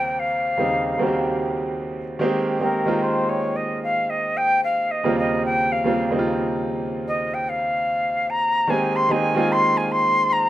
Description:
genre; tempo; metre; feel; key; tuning
R&B; 74 BPM; 4/4; swing 64% on 16ths; Ab major; A4 = 439 Hz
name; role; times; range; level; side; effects
jazz flute; melody; 0.0-10.5 s; Bb4 to C6; -21 LUFS; left 1 dB; none
bright grand piano; accompaniment; 0.0-10.5 s; Eb2 to G4; -23 LUFS; right 1 dB; none
room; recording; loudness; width
light reverb, studio reverb; rough home demo mix; -19 LUFS; side -13 dB against mid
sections
0.0-2.2 A section; 2.2-10.5 B section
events
flute solo 2.2-10.5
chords
0.0 Eb13; 2.2 Abmaj9; 5.0 Eb13; 8.7 Abmaj9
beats
0.57 1.38 | 2.19 3.00 3.81 4.62 | 5.43 6.25 7.06 7.87 | 8.68 9.49 10.30

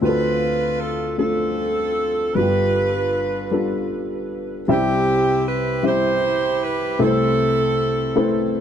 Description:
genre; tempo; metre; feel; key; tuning
gospel; 52 BPM (dotted quarters); 6/8; straight; C major; A4 = 440 Hz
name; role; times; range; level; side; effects
warm saxophone section; melody; 0.0-8.5 s; C4 to C5; -21 LUFS; right 2 dB; tape echo
dark baby grand piano; accompaniment; 0.0-8.6 s; G1 to E5; -21 LUFS; left 2 dB; none
room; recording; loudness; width
moderate booth ambience, RT60 0.2 s; none; -18 LUFS; side -8 dB against mid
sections
0.0-4.7 A section; 4.7-8.6 B section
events
none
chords
0.0 Dm7; 2.4 G7; 4.7 C; 7.0 Am/C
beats
| 0.02 1.19 | 2.35 3.52 | 4.68 5.84 | 7.00 8.16

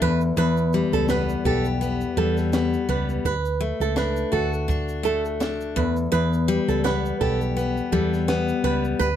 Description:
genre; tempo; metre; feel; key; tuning
acoustic pop; 84 BPM; 4/4; swing 55% on 16ths; unclear; A4 = 440 Hz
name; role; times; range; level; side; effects
picked steel-string acoustic guitar; accompaniment; 0.0-9.1 s; E2 to G4; -24 LUFS; left 6 dB; none
flamenco guitar; arpeggios; 0.0-9.2 s; A4 to B4; -27 LUFS; right 8 dB; none
woody fretless electric bass; bass; 0.0-9.2 s; B1 to E2; -26 LUFS; right 1 dB; none
compact cocktail drum kit; drums; 0.0-9.2 s; kick drum, shaker, snare drum; -30 LUFS; right 1 dB; none
room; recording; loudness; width
little or no reverb; close, detailed microphones; -20 LUFS; side -10 dB against mid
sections
0.0-9.2 A section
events
none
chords
0.0 Em; 3.3 D; 5.8 Em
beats
| 0.38 1.10 1.82 2.54 | 3.25 3.97 4.69 5.41 | 6.13 6.85 7.56 8.28 | 9.00

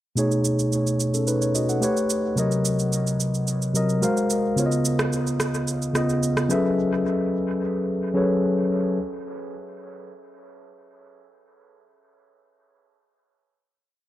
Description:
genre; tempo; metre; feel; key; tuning
amapiano; 109 BPM; 4/4; straight; F# dorian; A4 = 440 Hz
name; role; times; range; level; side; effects
mellow tine electric piano; accompaniment; 0.2-9.0 s; B2 to F#5; -22 LUFS; equal; dub echo
electronic shaker and rim click; drums; 0.2-6.6 s; none; -29 LUFS; right 2 dB; dub echo
room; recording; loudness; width
moderate plate reverb, RT60 1.8 s; echo-heavy mix; -21 LUFS; side -14 dB against mid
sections
0.2-9.0 breakdown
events
none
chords
0.2 B13; 1.8 A9; 2.4 Cm7b5; 4.0 G#13; 4.6 C#9; 6.5 F#m11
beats
| 0.17 0.72 1.27 1.82 | 2.37 2.92 3.48 4.03 | 4.58 5.13 5.68 6.23 | 6.78 7.33 7.88 8.43

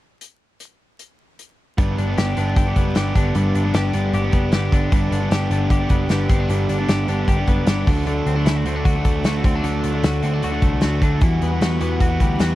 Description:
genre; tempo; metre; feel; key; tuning
jangly indie pop; 153 BPM; 4/4; straight; G major; A4 = 436 Hz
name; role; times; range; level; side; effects
loose indie drum kit; drums; 0.2-12.5 s; hi-hat, kick drum, snare drum; -19 LUFS; equal; none
biting overdriven guitar; accompaniment; 1.8-12.6 s; G2 to F#4; -25 LUFS; right 4 dB; none
twelve-string electric guitar; arpeggios; 1.8-12.6 s; G2 to G4; -23 LUFS; left 3 dB; none
vintage muted picked electric bass; bass; 1.8-12.6 s; F#1 to E2; -22 LUFS; equal; none
room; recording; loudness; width
little or no reverb; dry, close 1970s-style studio recording, vinyl crackle; -17 LUFS; side -16 dB against mid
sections
0.2-1.8 A section; 1.8-12.6 B section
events
none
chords
0.2 N.C.; 1.8 G; 7.9 D; 11.2 Emadd9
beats
| 0.21 0.60 0.99 1.39 | 1.78 2.17 2.56 2.96 | 3.35 3.74 4.13 4.53 | 4.92 5.31 5.71 6.10 | 6.49 6.89 7.28 7.67 | 8.07 8.46 8.86 9.25 | 9.64 10.04 10.43 10.82 | 11.22 11.61 12.01 12.40

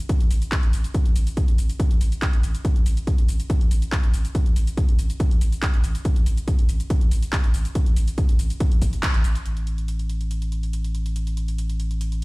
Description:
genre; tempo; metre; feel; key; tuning
driving peak-time techno; 141 BPM; 4/4; straight; unclear; A4 = 437 Hz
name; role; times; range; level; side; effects
electronic kick drum; drums; 0.1-9.1 s; none; -20 LUFS; equal; none
techno drum kit; drums; 0.1-12.2 s; handclaps, hi-hat, shaker; -33 LUFS; equal; none
saturated sub bass; bass; 0.2-12.2 s; A1; -23 LUFS; equal; overdrive, sidechain pumping, low-pass filter
room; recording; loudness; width
little or no reverb; played on a big sound system in a bare room, stone room reverb; -19 LUFS; side -24 dB against mid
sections
0.0-9.5 A section; 9.5-12.2 B section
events
band accent 9.0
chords
none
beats
0.09 0.52 | 0.94 1.37 1.80 2.22 | 2.65 3.07 3.50 3.92 | 4.35 4.77 5.20 5.62 | 6.05 6.48 6.90 7.33 | 7.75 8.18 8.60 9.03 | 9.46 9.88 10.31 10.73 | 11.16 11.58 12.01

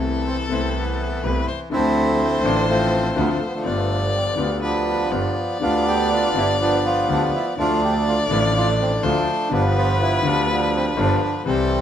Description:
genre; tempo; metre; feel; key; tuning
tango; 124 BPM; 4/4; rubato; unclear; A4 = 440 Hz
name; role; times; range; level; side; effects
bandoneon; melody; 0.0-11.8 s; D3 to G4; -22 LUFS; right 1 dB; none
warm violin; second line; 0.0-11.8 s; A4 to D5; -26 LUFS; left 2 dB; none
warm grand piano; accompaniment; 0.0-11.8 s; G1 to G4; -24 LUFS; left 5 dB; none
rich double bass; bass; 0.0-11.8 s; G1 to D2; -24 LUFS; right 2 dB; none
room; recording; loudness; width
moderate large studio reverb, RT60 0.8 s; minimal, uncompressed stereo recording; -18 LUFS; side -9 dB against mid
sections
0.0-11.8 A section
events
none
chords
0.0 Amadd9/C; 1.7 Dm7; 3.6 G7; 7.6 Dm; 9.5 G7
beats
0.26 0.75 1.24 | 1.72 2.20 2.68 3.17 | 3.65 4.14 4.62 5.12 | 5.62 6.11 6.60 7.09 | 7.58 8.06 8.55 9.03 | 9.52 10.00 10.48 10.97 | 11.46

